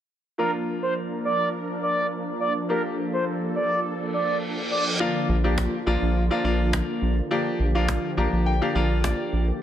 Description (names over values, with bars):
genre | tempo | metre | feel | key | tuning
dance-pop | 104 BPM | 4/4 | straight | Bb major | A4 = 440 Hz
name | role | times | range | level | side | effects
expressive synth lead | melody | 0.4-4.8 s | Bb4 to D5 | -26 LUFS | right 1 dB | chorus, ping-pong delay
clear baby grand piano | accompaniment | 0.4-9.6 s | F3 to Bb5 | -27 LUFS | left 2 dB | none
filtered supersaw swell | sustained chords | 0.4-9.6 s | D3 to Bb4 | -29 LUFS | equal | none
reverse cymbal | sound effects | 4.1-5.0 s | none | -30 LUFS | right 1 dB | none
round analog bass | bass | 5.3-9.5 s | Bb1 | -23 LUFS | equal | none
cajon | drums | 5.6-9.2 s | none | -30 LUFS | equal | none
room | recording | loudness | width
light reverb | none | -22 LUFS | side -10 dB against mid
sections
0.4-5.0 A section; 5.0-9.6 B section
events
reverse cymbal 4.1-5.0; grand piano fill 7.9-9.6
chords
0.4 Bb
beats
| 0.39 0.96 1.54 2.12 | 2.69 3.27 3.85 4.42 | 5.00 5.58 6.16 6.73 | 7.31 7.89 8.46 9.04 | 9.62